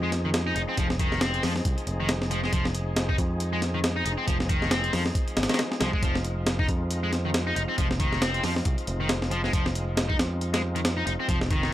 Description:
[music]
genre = breakbeat, breaks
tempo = 137 BPM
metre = 4/4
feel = swing 58% on 16ths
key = F minor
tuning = A4 = 440 Hz
[part]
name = percussive tonewheel organ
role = sustained chords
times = 0.0-11.7 s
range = F3 to Ab4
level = -35 LUFS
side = equal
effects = overdrive, fast rotary speaker, vintage 12-bit sampler grit, sidechain pumping
[part]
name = distorted electric guitar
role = riff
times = 0.0-11.7 s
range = Eb3 to Eb4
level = -30 LUFS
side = left 1 dB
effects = overdrive, tape echo
[part]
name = picked electric bass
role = bass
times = 0.0-11.7 s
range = F1 to F2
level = -29 LUFS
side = equal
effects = tube saturation
[part]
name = breakbeat sampler-style drum kit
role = drums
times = 0.1-11.7 s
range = hi-hat, kick drum, snare drum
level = -26 LUFS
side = equal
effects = none
[sound]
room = little or no reverb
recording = dry, gritty hardware recording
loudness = -24 LUFS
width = side -13 dB against mid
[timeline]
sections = 0.0-11.7 A section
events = none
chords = 0.0 Fm7

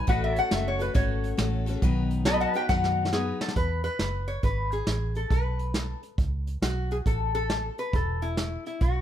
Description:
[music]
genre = honky-tonk and classic country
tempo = 137 BPM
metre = 4/4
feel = swing 65% on 8ths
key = E major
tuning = A4 = 440 Hz
[part]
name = lap resonator guitar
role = melody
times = 0.0-9.0 s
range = E4 to B5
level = -29 LUFS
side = left 2 dB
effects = plate reverb
[part]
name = picked steel-string acoustic guitar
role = accompaniment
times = 0.0-3.6 s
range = B2 to B4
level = -31 LUFS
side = left 6 dB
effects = none
[part]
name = pedal steel guitar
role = sustained chords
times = 0.0-3.6 s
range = F#4 to D#5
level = -37 LUFS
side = right 2 dB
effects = none
[part]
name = vintage muted fingered electric bass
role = bass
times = 0.1-9.0 s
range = E1 to F#2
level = -29 LUFS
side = right 1 dB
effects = none
[part]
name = vintage brush drum kit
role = drums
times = 0.1-8.9 s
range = hi-hat, kick drum, snare drum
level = -28 LUFS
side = right 1 dB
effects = none
[sound]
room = little or no reverb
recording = close, detailed microphones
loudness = -24 LUFS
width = side -10 dB against mid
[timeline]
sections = 0.0-3.6 A section; 3.6-9.0 B section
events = resonator guitar played with a steel bar solo 0.0-3.6; drum fill 2.7-3.6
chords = 0.1 F#m; 1.8 B; 3.6 E; 5.3 Bsus2; 7.1 A5

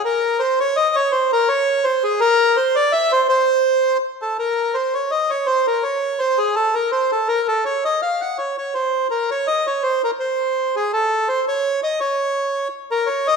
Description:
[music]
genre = musette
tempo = 166 BPM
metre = 3/4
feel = swing 54% on 8ths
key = unclear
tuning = A4 = 440 Hz
[part]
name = bandoneon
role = solo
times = 0.0-13.4 s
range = Ab4 to Gb5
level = -17 LUFS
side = equal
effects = none
[sound]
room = moderate recital hall reverb, RT60 1.6 s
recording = minimal, uncompressed stereo recording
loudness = -17 LUFS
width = side -5 dB against mid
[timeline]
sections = 0.0-13.1 A section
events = none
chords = none

